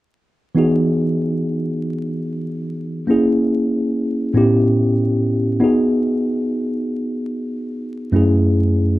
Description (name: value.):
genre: hip hop.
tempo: 95 BPM.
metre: 4/4.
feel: swing 60% on 16ths.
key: E major.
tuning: A4 = 440 Hz.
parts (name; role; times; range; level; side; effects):
mellow tine electric piano; accompaniment; 0.5-9.0 s; F#2 to G#4; -16 LUFS; equal; medium stereo tremolo.
room: moderate studio reverb, RT60 0.5 s.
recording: dark, warm production, vinyl crackle.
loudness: -16 LUFS.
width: side -17 dB against mid.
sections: 0.6-9.0 A section.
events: none.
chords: 0.6 Emaj7; 3.1 A#m7b5; 4.4 A9; 5.6 G#m7; 8.1 F#m7.